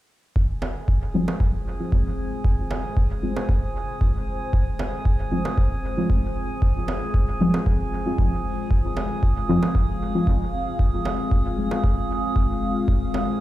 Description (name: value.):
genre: dub techno.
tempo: 115 BPM.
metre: 4/4.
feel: straight.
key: F minor.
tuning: A4 = 440 Hz.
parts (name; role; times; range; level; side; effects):
deep dark ambient pad; sustained chords; 0.8-13.4 s; Ab3 to F5; -30 LUFS; left 2 dB; chorus, built-in reverb, sidechain pumping.
electronic kick drum; drums; 0.4-13.0 s; none; -22 LUFS; equal; none.
drifting glass-harmonics texture; texture; 0.7-13.4 s; Ab4; -32 LUFS; right 3 dB; chorus, built-in reverb, sidechain pumping.
bongos; percussion; 0.6-13.3 s; none; -33 LUFS; right 2 dB; overdrive, sidechain pumping on perc, dub echo.
deep mellow chord stab; stabs; 1.1-11.7 s; F3 to F4; -27 LUFS; left 1 dB; chorus, phaser, sidechain pumping, dub echo.
room: light reverb, digital ambience.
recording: played on a big sound system in a bare room, large studio reverb.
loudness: -21 LUFS.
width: side -15 dB against mid.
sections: 0.4-13.4 A section.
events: filter sweep on synth stab 0.4-13.4.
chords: 0.4 Fm.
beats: | 0.36 0.88 1.40 1.92 | 2.45 2.97 3.49 4.01 | 4.53 5.05 5.58 6.10 | 6.62 7.14 7.66 8.19 | 8.71 9.23 9.75 10.27 | 10.79 11.31 11.84 12.36 | 12.88 13.40.